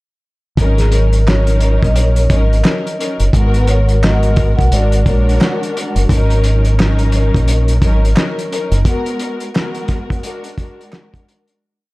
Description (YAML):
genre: hip hop, boom-bap hip-hop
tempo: 87 BPM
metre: 4/4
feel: swing 61% on 16ths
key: unclear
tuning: A4 = 440 Hz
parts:
  - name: dark studio string section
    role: accompaniment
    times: 0.6-11.6 s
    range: F#3 to A#4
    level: -20 LUFS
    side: left 2 dB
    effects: high-pass filter, low-pass filter
  - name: deep dub fingered electric bass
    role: bass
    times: 0.6-8.8 s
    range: F#1 to B1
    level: -12 LUFS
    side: equal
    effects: none
  - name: cloth-damped thuddy drum kit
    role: drums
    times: 0.6-11.6 s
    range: handclaps, hi-hat, kick drum, snare drum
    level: -17 LUFS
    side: equal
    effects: none
  - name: vibraphone with soft mallets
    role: melody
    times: 0.8-5.6 s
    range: G#4 to F#5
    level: -22 LUFS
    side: equal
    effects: high-pass filter, low-pass filter, slapback echo
room: small room reverb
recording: dark, warm production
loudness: -12 LUFS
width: side -22 dB against mid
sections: 0.6-11.6 verse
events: break 8.9-11.6; fade-out 8.9-11.6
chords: 0.6 D#m7/G#; 3.3 G#m9; 4.7 A#aug7/G#; 6.1 D#m7/G#; 8.9 G#m9; 10.2 A#aug7/G#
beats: | 0.57 1.26 1.95 2.64 | 3.33 4.02 4.71 5.40 | 6.09 6.78 7.47 8.16 | 8.85 9.54 10.23 10.92